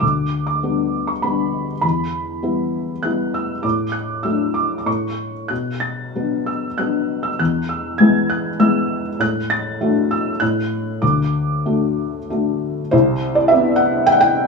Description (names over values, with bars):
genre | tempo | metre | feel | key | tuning
classical, lyrical solo piano | 98 BPM | 3/4 | uneven beats, rubato | D major | A4 = 442 Hz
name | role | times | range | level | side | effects
felt-muted upright piano | solo | 0.0-14.5 s | C2 to A6 | -17 LUFS | left 1 dB | none
room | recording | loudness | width
light reverb | studio ambience | -17 LUFS | side -4 dB against mid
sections
0.0-12.9 A section; 12.9-14.5 B section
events
none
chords
0.0 G/D; 1.8 Em; 3.6 D/A; 4.9 N.C.; 5.5 Bm; 7.4 E; 9.2 D/A; 10.4 N.C.; 11.0 D; 12.9 Cmaj7